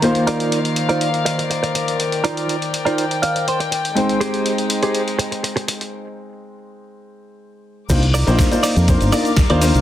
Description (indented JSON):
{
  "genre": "nu-disco, nu disco",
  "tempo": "122 BPM",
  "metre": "4/4",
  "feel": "straight",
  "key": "C minor",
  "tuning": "A4 = 440 Hz",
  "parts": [
    { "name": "warm baby grand piano", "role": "accompaniment", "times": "0.0-9.8 s", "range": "Ab3 to G5", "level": "-21 LUFS", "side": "left 1 dB", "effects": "vintage 12-bit sampler grit, tape echo" },
    { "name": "dark chamber string section", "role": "sustained chords", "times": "0.0-9.8 s", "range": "Eb3 to D6", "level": "-23 LUFS", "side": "left 2 dB", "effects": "sidechain pumping" },
    { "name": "dusty soul sampler-style drum kit", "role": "drums", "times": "0.0-9.8 s", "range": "crash cymbal, hi-hat, ride cymbal, snare drum", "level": "-25 LUFS", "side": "left 1 dB", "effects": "studio reverb" },
    { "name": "direct-recorded clean electric guitar", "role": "riff", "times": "0.3-9.8 s", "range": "Eb4 to F5", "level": "-22 LUFS", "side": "right 3 dB", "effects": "wide subtle chorus, low-pass filter, tape echo" },
    { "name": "fingered electric bass", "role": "bass", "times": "7.9-9.8 s", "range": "G1 to F2", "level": "-16 LUFS", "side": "equal", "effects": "none" },
    { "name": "electronic kick drum", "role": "drums", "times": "7.9-9.5 s", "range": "none", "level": "-17 LUFS", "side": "equal", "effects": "studio reverb" },
    { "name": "cabasa", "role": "percussion", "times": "7.9-9.8 s", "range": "none", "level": "-30 LUFS", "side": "left 1 dB", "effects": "none" }
  ],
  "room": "light reverb, small room ambience",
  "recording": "dense, heavily limited modern master",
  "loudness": "-16 LUFS",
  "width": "side -12 dB against mid",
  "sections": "0.0-7.9 A section; 7.9-9.8 B section",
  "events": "filter sweep on string section 0.0-7.9; clean electric guitar fill 3.0-4.0; break 5.9-7.9; drop 7.9-9.8",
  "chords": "0.0 Cm11; 4.0 Abmaj7; 7.9 Cm11",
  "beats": "| 0.03 0.52 1.01 1.50 | 2.00 2.49 2.98 3.47 | 3.96 4.46 4.95 5.44 | 5.93 6.42 6.92 7.41 | 7.90 8.39 8.88 9.37"
}